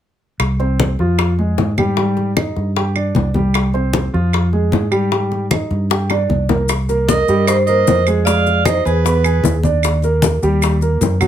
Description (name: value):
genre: Afro-Cuban jazz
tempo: 153 BPM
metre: 4/4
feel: straight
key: C minor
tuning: A4 = 440 Hz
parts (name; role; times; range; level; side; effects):
- fingered electric bass; bass; 0.4-11.3 s; C2 to Ab2; -18 LUFS; equal; none
- bongos; percussion; 0.4-11.3 s; none; -22 LUFS; left 9 dB; none
- claves; percussion; 0.4-11.3 s; none; -24 LUFS; right 7 dB; none
- congas; percussion; 0.4-11.3 s; none; -21 LUFS; left 2 dB; none
- warm baby grand piano; accompaniment; 0.6-11.3 s; F3 to Ab5; -19 LUFS; right 2 dB; none
- maracas; percussion; 6.7-11.3 s; none; -29 LUFS; left 9 dB; none
- vibraphone with medium hard mallets; melody; 7.1-9.6 s; Ab4 to D5; -18 LUFS; equal; plate reverb
- overdriven harmonica; second line; 7.1-9.6 s; B4 to F5; -20 LUFS; right 8 dB; none
room: light reverb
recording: none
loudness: -14 LUFS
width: side -10 dB against mid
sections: 0.4-6.7 A section; 6.7-11.3 B section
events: drum fill 5.9-6.7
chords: 0.4 Csus4; 1.2 Fmadd9; 2.0 Ab5; 2.8 G5; 3.5 C5; 4.3 Fmadd9; 5.1 Ab5; 5.9 G5; 6.7 Cm7; 8.3 Fm7; 9.1 E7; 9.8 Ebmaj7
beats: | 0.40 0.79 1.18 1.58 | 1.97 2.36 2.76 3.15 | 3.54 3.94 4.33 4.73 | 5.12 5.51 5.91 6.30 | 6.69 7.09 7.48 7.87 | 8.26 8.66 9.05 9.44 | 9.84 10.23 10.62 11.01